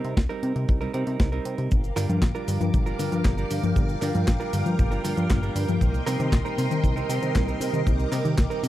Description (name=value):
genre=italo disco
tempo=117 BPM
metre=4/4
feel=straight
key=C minor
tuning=A4 = 440 Hz
part: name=direct-recorded clean electric guitar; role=stabs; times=0.0-8.7 s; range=G3 to Bb4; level=-32 LUFS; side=right 5 dB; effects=none
part: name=chorused synth bass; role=bass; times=0.0-8.7 s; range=G1 to C3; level=-27 LUFS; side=equal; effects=none
part: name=clean 12-bit digital drum machine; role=drums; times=0.0-8.7 s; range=cabasa, handclaps, hi-hat, snare drum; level=-32 LUFS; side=equal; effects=none
part: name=kick drum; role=drums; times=0.2-8.5 s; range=none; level=-23 LUFS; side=equal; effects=none
part: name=string machine, full ensemble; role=sustained chords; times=1.7-8.7 s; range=Bb4 to D6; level=-31 LUFS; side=right 1 dB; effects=phaser, ensemble chorus
part: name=soft round pluck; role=arpeggios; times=1.7-8.7 s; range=Bb2 to F3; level=-28 LUFS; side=left 2 dB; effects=chorus, tape echo
room=little or no reverb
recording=dry, close 1970s-style studio recording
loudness=-22 LUFS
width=side -14 dB against mid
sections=0.0-8.7 A section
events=none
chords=0.0 Cm7; 1.7 Gm7; 5.8 Cm7